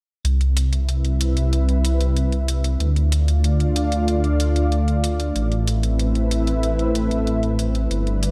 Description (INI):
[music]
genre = synthwave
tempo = 94 BPM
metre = 4/4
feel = straight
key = C major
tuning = A4 = 441 Hz
[part]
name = lush unison pad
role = sustained chords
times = 1.0-8.3 s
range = G3 to F5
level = -26 LUFS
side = equal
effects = chorus
[part]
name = dark detuned saw bass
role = bass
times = 0.2-8.3 s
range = G1 to D2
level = -22 LUFS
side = equal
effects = none
[part]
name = electronic hi-hat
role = drums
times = 0.2-8.3 s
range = none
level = -32 LUFS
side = equal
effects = overdrive, studio reverb
[sound]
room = light reverb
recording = dark, warm production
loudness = -20 LUFS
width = mono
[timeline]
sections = 0.2-8.3 A section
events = filter sweep on detuned saw bass 0.2-8.3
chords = 0.2 Cmaj7; 2.8 Dm; 5.4 Amadd9